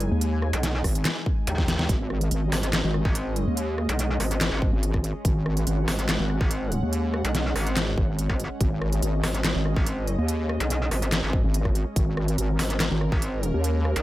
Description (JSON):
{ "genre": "heavy wobble dubstep", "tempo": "143 BPM", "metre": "4/4", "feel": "half-time", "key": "G# minor", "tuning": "A4 = 440 Hz", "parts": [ { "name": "supersaw pad", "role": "sustained chords", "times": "0.0-14.0 s", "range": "G#3 to G#5", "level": "-33 LUFS", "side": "equal", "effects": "phaser, sidechain pumping, low-pass filter" }, { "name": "metallic wobble bass", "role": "bass", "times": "0.0-14.0 s", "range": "G#1 to D#2", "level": "-26 LUFS", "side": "equal", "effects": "chorus, overdrive" }, { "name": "dubstep drum kit", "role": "drums", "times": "0.0-14.0 s", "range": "handclaps, hi-hat, rim click, snare drum", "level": "-28 LUFS", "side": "equal", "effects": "studio reverb" }, { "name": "wobble bass", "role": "bass", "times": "0.1-13.9 s", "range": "G#1 to D#2", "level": "-24 LUFS", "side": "equal", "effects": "chorus, overdrive" }, { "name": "electronic kick drum", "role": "drums", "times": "0.8-13.2 s", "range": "none", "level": "-25 LUFS", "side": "equal", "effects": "studio reverb" } ], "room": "little or no reverb", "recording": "none", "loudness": "-22 LUFS", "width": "side -16 dB against mid", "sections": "0.0-14.0 A section", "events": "drum fill 1.6-1.9", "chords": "0.0 G#5", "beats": "| 0.21 0.63 1.05 1.47 | 1.89 2.31 2.73 3.15 | 3.57 3.99 4.41 4.83 | 5.25 5.67 6.09 6.51 | 6.93 7.35 7.77 8.19 | 8.61 9.03 9.45 9.86 | 10.28 10.70 11.12 11.54 | 11.96 12.38 12.80 13.22 | 13.64" }